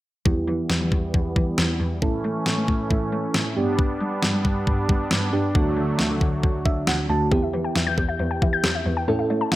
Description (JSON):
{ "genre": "synth-pop", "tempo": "136 BPM", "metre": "4/4", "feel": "straight", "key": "E dorian", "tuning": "A4 = 441 Hz", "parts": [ { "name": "mellow FM electric piano", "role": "accompaniment", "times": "0.3-9.6 s", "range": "A3 to A5", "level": "-27 LUFS", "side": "right 2 dB", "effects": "chorus, tremolo, low-pass filter" }, { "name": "brassy analog pad", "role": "sustained chords", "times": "0.3-7.3 s", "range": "E3 to D4", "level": "-29 LUFS", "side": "equal", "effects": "chorus, low-pass filter" }, { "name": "warm cello", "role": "bass", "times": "0.3-9.6 s", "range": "D2 to A3", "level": "-26 LUFS", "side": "equal", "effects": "none" }, { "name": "clean 12-bit digital drum machine", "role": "drums", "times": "0.3-9.6 s", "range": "kick drum, snare drum", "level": "-23 LUFS", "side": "equal", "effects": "gated reverb" }, { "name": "warbly dusty pluck", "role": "arpeggios", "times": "7.3-9.6 s", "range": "G4 to G6", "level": "-26 LUFS", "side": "left 5 dB", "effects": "chorus, tape echo" } ], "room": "light reverb, digital ambience", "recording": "none", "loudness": "-20 LUFS", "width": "side -16 dB against mid", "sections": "0.3-7.3 A section; 7.3-9.6 B section", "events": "filter sweep 0.3-7.3; FM electric piano fill 6.4-7.3", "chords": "0.3 Em; 2.0 A; 3.6 G; 5.6 D; 7.3 Em", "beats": "| 0.26 0.70 1.14 1.58 | 2.02 2.46 2.90 3.35 | 3.79 4.23 4.67 5.11 | 5.55 5.99 6.43 6.88 | 7.32 7.76 8.20 8.64 | 9.08 9.52" }